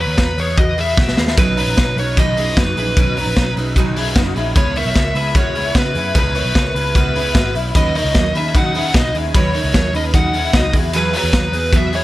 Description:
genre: jangly indie pop.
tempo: 151 BPM.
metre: 4/4.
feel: straight.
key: B major.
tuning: A4 = 441 Hz.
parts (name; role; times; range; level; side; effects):
fuzz lead guitar; melody; 0.0-12.0 s; B4 to F#5; -21 LUFS; equal; distortion.
electric guitar through a small old amp; arpeggios; 0.0-12.0 s; B3 to A#5; -24 LUFS; left 3 dB; analog chorus, tape echo.
vintage muted picked electric bass; bass; 0.0-12.0 s; F#1 to C#3; -22 LUFS; equal; tube saturation.
raw garage drum kit; drums; 0.2-12.0 s; hi-hat, kick drum, ride cymbal, snare drum; -16 LUFS; equal; none.
picked steel-string acoustic guitar; accompaniment; 1.4-12.0 s; B2 to B4; -24 LUFS; right 5 dB; none.
room: light reverb.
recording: none.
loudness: -14 LUFS.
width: side -16 dB against mid.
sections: 0.0-12.0 A section.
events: drum fill 1.0-1.4.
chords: 0.0 Badd9; 4.6 C#m7; 7.7 Badd9; 10.7 Eadd9.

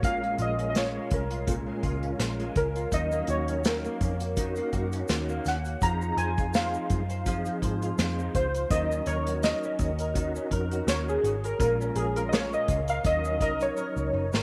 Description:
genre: indie pop, bedroom pop.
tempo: 83 BPM.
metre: 4/4.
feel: swing 55% on 16ths.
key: Eb dorian.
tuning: A4 = 440 Hz.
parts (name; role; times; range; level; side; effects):
warbly lo-fi synth keys; melody; 0.0-14.4 s; Ab4 to Bb5; -32 LUFS; equal; lush chorus, tape echo.
flamenco guitar; accompaniment; 0.0-14.4 s; Bb2 to C5; -38 LUFS; equal; ensemble chorus, vibrato effect.
mellow tonewheel organ; accompaniment; 0.0-14.3 s; F3 to Bb4; -37 LUFS; equal; chorus vibrato, fast rotary speaker, cassette tape.
vintage muted picked electric bass; bass; 0.0-14.4 s; Gb1 to Ab2; -34 LUFS; equal; none.
unplugged drum kit; drums; 0.0-14.4 s; hi-hat, kick drum, snare drum; -32 LUFS; equal; none.
tube shaker; percussion; 2.9-14.4 s; none; -51 LUFS; equal; none.
room: moderate spring reverb, RT60 2.4 s.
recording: none.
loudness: -28 LUFS.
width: mono.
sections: 0.0-14.4 A section.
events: synth keys solo 0.0-14.4; drum fill 13.8-14.4.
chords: 0.0 Bbm7; 2.9 Ebm7; 5.8 Fm7; 8.7 Ebm7; 11.6 Bbm7; 13.0 Ebm7.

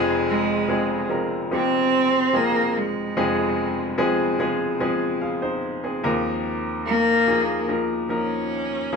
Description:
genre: pop.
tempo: 73 BPM.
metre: 4/4.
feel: straight.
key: F minor.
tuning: A4 = 439 Hz.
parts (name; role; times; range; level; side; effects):
clear baby grand piano; accompaniment; 0.0-9.0 s; F1 to F5; -22 LUFS; left 1 dB; none.
rich cello; melody; 0.3-9.0 s; Ab3 to Db4; -22 LUFS; right 1 dB; none.
room: wet studio reverb, RT60 0.6 s.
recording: band playing live in one room.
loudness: -20 LUFS.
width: side -5 dB against mid.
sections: 0.0-9.0 A section.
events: none.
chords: 0.0 Fm; 6.0 Ebsus2.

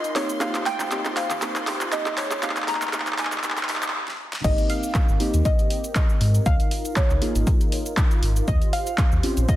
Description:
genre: deep house.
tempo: 119 BPM.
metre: 4/4.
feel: swing 55% on 16ths.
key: Ab major.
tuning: A4 = 440 Hz.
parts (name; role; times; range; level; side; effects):
soft round pluck; melody; 0.0-9.6 s; Db5 to Bb5; -29 LUFS; equal; wide subtle chorus, analog delay.
warm analog pad; sustained chords; 0.0-9.6 s; C4 to C5; -35 LUFS; equal; chorus, vintage 12-bit sampler grit, sidechain pumping.
deep house drum kit; drums; 0.0-9.6 s; crash cymbal, handclaps, hi-hat, shaker, snare drum; -27 LUFS; equal; overdrive.
rich chamber violin section; texture; 0.0-3.9 s; C6; -39 LUFS; right 1 dB; none.
deep mellow chord stab; stabs; 0.2-9.6 s; Bb3 to Ab4; -31 LUFS; equal; chorus, sidechain pumping, analog delay.
sub bass with octave; bass; 0.2-9.5 s; Ab1 to Bb2; -22 LUFS; equal; sidechain pumping, high-pass filter.
bongos and congas; percussion; 0.2-3.7 s; none; -38 LUFS; right 3 dB; sidechain pumping on perc.
electronic kick drum; drums; 4.4-9.6 s; none; -21 LUFS; equal; overdrive.
room: moderate echo chamber reverb, RT60 1.3 s.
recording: dense, heavily limited modern master, high-pass filter.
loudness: -20 LUFS.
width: side -14 dB against mid.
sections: 0.0-4.4 A section; 4.4-9.6 B section.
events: build-up 0.0-4.4; drum fill 0.0-3.9, 4.1-4.4; filter sweep on synth stab 0.0-4.4; filter sweep 0.0-4.4; break 3.9-4.4; drop 4.4-9.6.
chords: 0.4 Eb69; 2.2 Bbsus2; 4.4 Abmaj7; 6.5 Db6; 8.5 Eb13.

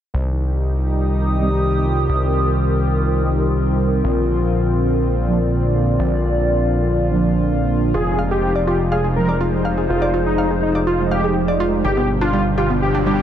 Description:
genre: techno.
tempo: 123 BPM.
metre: 4/4.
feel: straight.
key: C minor.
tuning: A4 = 440 Hz.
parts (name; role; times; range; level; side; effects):
warm analog pad; sustained chords; 0.1-13.2 s; Bb2 to G4; -22 LUFS; left 1 dB; chorus.
gritty driven synth bass; bass; 0.1-13.2 s; F1 to C2; -20 LUFS; equal; distortion.
warbly tape-like pad; texture; 0.9-13.2 s; D4 to Eb6; -24 LUFS; right 1 dB; chorus, built-in reverb, phaser.
analog synth brass; stabs; 1.4-13.2 s; F3 to Eb4; -25 LUFS; right 4 dB; chorus, cassette tape, tape echo.
wide unison lead; melody; 7.9-13.2 s; Eb4 to Bb4; -21 LUFS; equal; digital delay.
woody wave-folded pluck; arpeggios; 7.9-13.1 s; G3 to F5; -23 LUFS; right 1 dB; chorus, tape echo.
riser; sound effects; 12.5-13.2 s; none; -28 LUFS; left 1 dB; none.
room: light reverb.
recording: none.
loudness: -16 LUFS.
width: side -10 dB against mid.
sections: 0.1-13.2 A section.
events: filter sweep on analog polysynth 0.1-13.2; riser 12.5-13.2.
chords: 0.1 Cm; 4.0 Bb; 7.9 Fm7; 11.8 G.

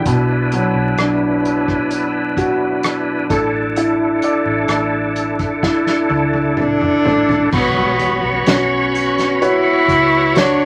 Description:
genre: pop ballad.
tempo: 64 BPM.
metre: 4/4.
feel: straight.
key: B minor.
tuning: A4 = 440 Hz.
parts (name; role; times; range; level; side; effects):
warm baby grand piano; accompaniment; 0.0-10.7 s; B2 to D5; -21 LUFS; equal; none.
bright tonewheel organ; sustained chords; 0.0-10.7 s; D4 to C#6; -21 LUFS; equal; chorus vibrato, slow rotary speaker.
vintage muted fingered electric bass; bass; 0.0-10.7 s; A1 to D2; -29 LUFS; equal; none.
unplugged drum kit; drums; 0.1-10.6 s; crash cymbal, hi-hat, kick drum, rim click, snare drum, toms; -24 LUFS; equal; none.
warm cello; melody; 6.6-10.7 s; B3 to E4; -18 LUFS; equal; none.
impact; sound effects; 7.5-10.7 s; none; -30 LUFS; equal; none.
room: moderate studio reverb, RT60 0.5 s.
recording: vinyl crackle.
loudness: -16 LUFS.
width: mono.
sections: 0.0-7.5 A section; 7.5-10.7 B section.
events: drum fill 5.6-7.5; impact 7.5-10.7.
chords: 0.1 Bm; 3.3 Asus4; 7.5 Bsus2.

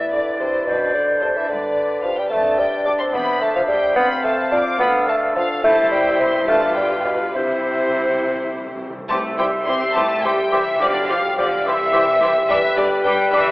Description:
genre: quick classical-period movement for symphony orchestra.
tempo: 72 BPM (dotted quarters).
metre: 6/8.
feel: rubato.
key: C major.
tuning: A4 = 440 Hz.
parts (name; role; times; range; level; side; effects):
clear clarinet; second line; 0.0-13.4 s; G4 to C5; -26 LUFS; equal; none.
silver concert flute; second line; 0.0-13.4 s; D5 to D6; -25 LUFS; equal; none.
warm studio violin section; second line; 0.0-13.4 s; G4 to D6; -28 LUFS; left 1 dB; none.
warm French horn section; sustained chords; 0.0-13.5 s; G3 to G4; -26 LUFS; left 1 dB; none.
clear studio double bass section; bass; 0.0-13.5 s; E1 to D2; -36 LUFS; equal; none.
rich studio cello section; bass; 0.0-13.5 s; D2 to C4; -30 LUFS; equal; none.
mellow bassoon; accompaniment; 0.1-13.5 s; B2 to D4; -20 LUFS; equal; none.
warm studio violin section; melody; 0.4-13.5 s; A4 to C6; -25 LUFS; left 1 dB; none.
dark studio viola section; accompaniment; 0.4-13.4 s; G3 to A4; -30 LUFS; equal; none.
timpani; percussion; 5.6-9.9 s; G2 to C3; -39 LUFS; equal; none.
warm trumpet section; stabs; 9.1-13.5 s; B4 to F5; -21 LUFS; equal; none.
room: wet scoring stage reverb, RT60 1.9 s.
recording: telephone sound.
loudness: -16 LUFS.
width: side -20 dB against mid.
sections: 0.0-9.1 A section; 9.1-13.5 A section.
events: timpani fill 7.4-9.1.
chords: 0.0 G; 0.7 D7/F#; 1.5 G; 2.3 G7/F; 3.2 C/E; 4.0 F; 4.8 Dm; 5.6 C/G; 6.5 G7; 7.4 C; 10.8 G7/B; 11.7 C; 12.5 G.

